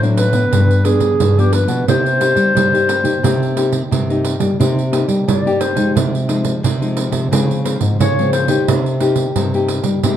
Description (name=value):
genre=samba and choro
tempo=88 BPM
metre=4/4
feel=straight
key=C minor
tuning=A4 = 441 Hz
part: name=nylon-string guitar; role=accompaniment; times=0.0-10.2 s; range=G2 to G4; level=-19 LUFS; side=left 3 dB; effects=none
part: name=nylon-string guitar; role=bass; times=0.0-10.2 s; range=G2 to G3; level=-18 LUFS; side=left 1 dB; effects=none
part: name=pandeiro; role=percussion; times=0.0-10.2 s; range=none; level=-20 LUFS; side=right 7 dB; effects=none
part: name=dark clarinet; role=melody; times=0.2-8.6 s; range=G4 to D5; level=-17 LUFS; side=equal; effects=none
room=moderate studio reverb, RT60 0.5 s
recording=dark, warm production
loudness=-13 LUFS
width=side -10 dB against mid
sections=0.0-4.6 A section; 4.6-10.2 B section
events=clarinet solo 4.6-10.2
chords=0.0 D7/A; 0.5 G7; 1.9 Cm7; 6.0 Fm7/C; 7.3 Dbmaj7; 8.7 Cm7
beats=0.52 1.20 | 1.88 2.56 3.24 3.92 | 4.60 5.28 5.96 6.64 | 7.32 8.00 8.68 9.36 | 10.04